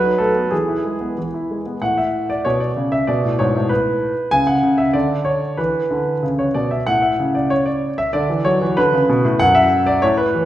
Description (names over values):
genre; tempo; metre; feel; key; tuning
classical-period piano sonatina; 95 BPM; 2/4; straight; A major; A4 = 439 Hz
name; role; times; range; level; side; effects
clear grand piano; solo; 0.0-10.5 s; F#2 to G#5; -15 LUFS; equal; none
room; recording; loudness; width
wet recital hall reverb, RT60 1.4 s; heard from further back in the room; -16 LUFS; side -13 dB against mid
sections
0.0-1.8 A section; 1.8-10.5 B section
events
none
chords
0.0 B7/F#; 0.5 E; 1.8 A; 3.1 Bm13/G#; 4.3 N.C.; 5.6 E5; 6.9 A; 8.1 Bm/D; 9.4 N.C.